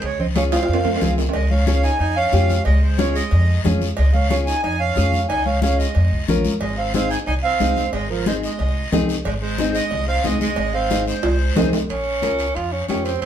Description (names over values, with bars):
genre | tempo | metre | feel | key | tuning
latin, cumbia | 182 BPM | 4/4 | straight | unclear | A4 = 440 Hz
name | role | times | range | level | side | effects
accordion | melody | 0.0-11.7 s | Bb4 to Ab5 | -24 LUFS | right 2 dB | none
breathy tenor saxophone | second line | 0.0-13.3 s | F3 to F4 | -26 LUFS | right 4 dB | none
upright bass | bass | 0.0-13.3 s | F1 to F2 | -21 LUFS | equal | none
congas | percussion | 0.0-13.3 s | none | -25 LUFS | left 1 dB | none
guiro | percussion | 0.0-13.3 s | none | -33 LUFS | left 5 dB | none
timbales and cowbell | percussion | 0.0-13.3 s | none | -26 LUFS | right 3 dB | none
nylon-string guitar | accompaniment | 0.4-13.1 s | C4 to Bb4 | -24 LUFS | left 4 dB | none
room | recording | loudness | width
wet studio reverb, RT60 0.6 s | band playing live in one room | -17 LUFS | side -10 dB against mid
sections
0.0-1.3 A section; 1.3-11.9 B section; 11.9-13.3 C section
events
drum fill 0.5-1.3, 11.2-11.9; tenor saxophone solo 11.9-13.3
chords
0.0 Db; 0.7 Fm; 1.3 Dbadd9; 6.6 Ab; 11.9 Bbm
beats
| 0.02 0.35 0.68 1.01 | 1.34 1.67 2.00 2.33 | 2.66 2.99 3.32 3.65 | 3.98 4.31 4.64 4.97 | 5.30 5.63 5.96 6.29 | 6.62 6.95 7.28 7.61 | 7.94 8.27 8.60 8.93 | 9.26 9.59 9.91 10.24 | 10.57 10.90 11.23 11.57 | 11.90 12.23 12.56 12.89 | 13.22